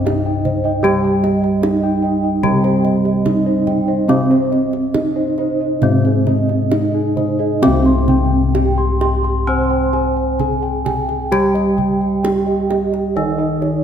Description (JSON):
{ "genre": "Javanese gamelan", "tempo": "65-77 BPM", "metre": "4/4", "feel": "straight", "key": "C pelog", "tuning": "A4 = 442 Hz", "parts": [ { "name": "gamelan-type bronze metallophone", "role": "melody", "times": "0.0-13.8 s", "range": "C4 to C5", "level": "-20 LUFS", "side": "right 2 dB", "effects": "none" }, { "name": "gamelan-type bronze metallophone", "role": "accompaniment", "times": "0.0-13.8 s", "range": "C3 to C4", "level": "-19 LUFS", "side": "equal", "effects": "none" }, { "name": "gamelan-type bronze metallophone", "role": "arpeggios", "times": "0.0-13.8 s", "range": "C5 to C6", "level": "-25 LUFS", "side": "right 5 dB", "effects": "none" }, { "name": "gamelan-type bossed gongs", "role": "bass", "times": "0.0-13.8 s", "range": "C2 to G4", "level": "-20 LUFS", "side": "left 1 dB", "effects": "none" }, { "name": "gamelan-type bossed gongs", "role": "arpeggios", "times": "0.1-13.8 s", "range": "Ab4 to C6", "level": "-25 LUFS", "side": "left 7 dB", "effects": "none" }, { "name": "kendang", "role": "percussion", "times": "0.1-13.7 s", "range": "none", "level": "-26 LUFS", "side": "right 5 dB", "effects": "none" } ], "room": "wet concert hall reverb, RT60 2.0 s", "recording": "none", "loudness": "-14 LUFS", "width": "side -8 dB against mid", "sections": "0.0-7.6 A section; 7.6-13.8 B section", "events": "none", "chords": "none", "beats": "0.06 | 0.84 1.63 2.44 3.26 | 4.09 4.95 5.83 6.72 | 7.63 8.55 9.48 10.40 | 11.32 12.25 13.17" }